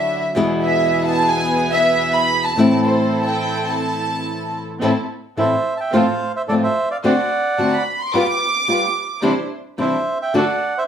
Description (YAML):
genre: tango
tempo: 108 BPM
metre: 4/4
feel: rubato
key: A minor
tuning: A4 = 439 Hz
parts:
  - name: warm studio violin section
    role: second line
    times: 0.0-9.2 s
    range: C5 to D6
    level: -19 LUFS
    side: right 1 dB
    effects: none
  - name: flamenco guitar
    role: accompaniment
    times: 0.0-10.4 s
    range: E2 to F#4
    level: -19 LUFS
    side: left 2 dB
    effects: none
  - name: dark studio string section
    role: stabs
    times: 0.0-10.6 s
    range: A2 to C5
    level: -25 LUFS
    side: right 2 dB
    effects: none
  - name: bandoneon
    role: melody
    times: 5.4-10.8 s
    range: A4 to A5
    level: -20 LUFS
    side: right 2 dB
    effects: none
room: wet studio reverb, RT60 0.8 s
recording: band playing live in one room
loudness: -16 LUFS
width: side -8 dB against mid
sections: 0.0-4.8 A section; 4.8-10.9 B section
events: violin section solo 0.0-4.8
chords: 0.4 E; 2.6 Am; 5.9 F/A; 7.0 D7; 8.1 G7; 9.2 Cadd9; 10.3 D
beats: | 0.36 0.91 1.47 2.02 | 2.58 3.14 3.70 4.26 | 4.82 5.38 5.93 6.49 | 7.04 7.59 8.14 8.69 | 9.24 9.79 10.34